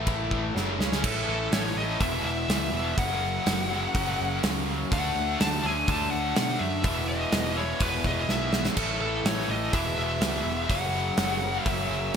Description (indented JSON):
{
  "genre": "hard rock",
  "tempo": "124 BPM",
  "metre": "4/4",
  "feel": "straight",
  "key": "unclear",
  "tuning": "A4 = 441 Hz",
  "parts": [
    { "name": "sweeping resonant pad", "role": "sustained chords", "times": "0.0-1.0, 8.8-12.2 s", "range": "E3 to B4", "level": "-43 LUFS", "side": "right 1 dB", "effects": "none" },
    { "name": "distorted electric guitar", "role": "riff", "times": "0.0-12.2 s", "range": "F#2 to E4", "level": "-34 LUFS", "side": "equal", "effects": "overdrive" },
    { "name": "overdriven electric guitar", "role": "riff", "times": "0.0-12.2 s", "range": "E2 to D4", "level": "-31 LUFS", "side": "equal", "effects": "harmonic tremolo" },
    { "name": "picked electric bass", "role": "bass", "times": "0.0-12.1 s", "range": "E1 to B2", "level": "-33 LUFS", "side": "equal", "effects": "none" },
    { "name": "gated 80s drum kit", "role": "drums", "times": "0.1-12.2 s", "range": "crash cymbal, hi-hat, kick drum, snare drum, splash cymbal", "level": "-29 LUFS", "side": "right 1 dB", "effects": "gated reverb" },
    { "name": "high-gain lead guitar", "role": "melody", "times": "1.1-12.1 s", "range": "A4 to A5", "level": "-30 LUFS", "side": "left 2 dB", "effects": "distortion" }
  ],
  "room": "moderate lush hall reverb, RT60 1.6 s, studio reverb",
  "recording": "bright 1980s-style digital production",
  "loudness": "-24 LUFS",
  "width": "side -7 dB against mid",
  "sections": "0.0-1.0 A section; 1.0-12.2 B section",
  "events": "drum fill 0.5-1.0, 8.3-8.8",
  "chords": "0.0 A5; 0.5 F#5; 1.0 A; 2.0 E; 3.0 F#; 4.9 D; 6.8 E; 8.8 A; 9.7 E; 10.7 F#",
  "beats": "0.06 0.55 | 1.03 1.52 2.00 2.49 | 2.97 3.45 3.94 4.42 | 4.90 5.38 5.87 6.35 | 6.83 7.32 7.80 8.28 | 8.76 9.25 9.73 10.21 | 10.69 11.18 11.66 12.14"
}